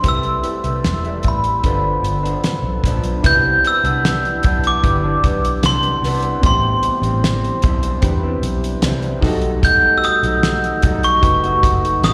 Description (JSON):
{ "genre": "indie pop, bedroom pop", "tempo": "75 BPM", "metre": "4/4", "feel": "straight", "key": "C major", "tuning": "A4 = 440 Hz", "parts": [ { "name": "glockenspiel with brass mallets", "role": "melody", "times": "0.0-12.1 s", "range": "B5 to G6", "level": "-20 LUFS", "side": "equal", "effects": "analog chorus, plate reverb, slapback echo" }, { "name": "electric guitar through a small old amp", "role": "accompaniment", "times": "0.0-12.1 s", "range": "A2 to F#4", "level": "-28 LUFS", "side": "equal", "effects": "lush chorus, warbly pitch drift, plate reverb, slapback echo" }, { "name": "warbly lo-fi synth keys", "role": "accompaniment", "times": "0.0-12.1 s", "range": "B3 to B4", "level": "-28 LUFS", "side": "equal", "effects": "chorus, plate reverb, slapback echo" }, { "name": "vintage muted fingered electric bass", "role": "bass", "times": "0.0-12.1 s", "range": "E1 to E2", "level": "-23 LUFS", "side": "equal", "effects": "none" }, { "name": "damped 70s drum kit", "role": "drums", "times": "0.0-12.1 s", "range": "hi-hat, kick drum, snare drum", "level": "-20 LUFS", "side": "equal", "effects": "none" } ], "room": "light reverb", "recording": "live gig heard through the venue's PA, recital hall reverb", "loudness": "-17 LUFS", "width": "mono", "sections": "0.0-3.2 A section; 3.2-12.1 B section", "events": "none", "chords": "0.0 Am7/C; 1.6 G7; 3.2 Cmaj9; 6.4 Am11; 9.2 B7b13" }